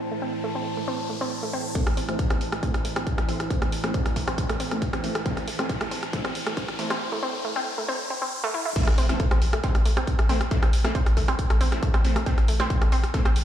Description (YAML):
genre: driving peak-time techno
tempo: 137 BPM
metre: 4/4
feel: straight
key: A minor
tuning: A4 = 439 Hz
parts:
  - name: metallic inharmonic drone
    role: drone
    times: 0.0-7.0 s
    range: A2 to E3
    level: -36 LUFS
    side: right 2 dB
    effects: chorus, built-in reverb, sidechain pumping
  - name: riser and impact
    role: sound effects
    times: 0.0-10.5 s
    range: none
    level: -36 LUFS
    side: left 1 dB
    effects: none
  - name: warbly tape-like pad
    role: texture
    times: 0.0-7.0 s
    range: E4 to A5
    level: -36 LUFS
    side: right 3 dB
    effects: chorus, built-in reverb, sidechain pumping
  - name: analog pluck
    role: riff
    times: 0.1-13.3 s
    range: A3 to E4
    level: -31 LUFS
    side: right 1 dB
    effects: chorus, sidechain pumping, digital delay
  - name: rave stab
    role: stabs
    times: 1.8-13.2 s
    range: E3 to C4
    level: -33 LUFS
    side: left 1 dB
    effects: chorus, built-in reverb, vintage 12-bit sampler grit, sidechain pumping, ping-pong delay
  - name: electronic kick drum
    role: drums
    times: 1.8-13.2 s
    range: none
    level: -24 LUFS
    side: equal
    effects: distortion
  - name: techno drum kit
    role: drums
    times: 1.8-13.4 s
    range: crash cymbal, hi-hat, rim click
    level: -31 LUFS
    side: right 1 dB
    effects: sidechain pumping on hats, sidechain pumping on cymbals
  - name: saturated sub bass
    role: bass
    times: 8.9-13.4 s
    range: A1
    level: -24 LUFS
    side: equal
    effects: overdrive, sidechain pumping, low-pass filter
room: light reverb, digital ambience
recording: played on a big sound system in a bare room, large studio reverb, high-pass filter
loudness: -22 LUFS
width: side -11 dB against mid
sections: 0.0-1.8 A section; 1.8-8.8 B section; 8.8-13.4 C section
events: riser 0.0-1.8, 1.8-8.8; filter sweep on synth arpeggio sound 0.0-1.8, 1.8-8.8; build-up 1.8-8.8; filter sweep on synth stab 1.8-8.8; filter sweep 1.8-8.8; drop 8.8-13.4; impact 8.8-10.5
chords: 0.0 Am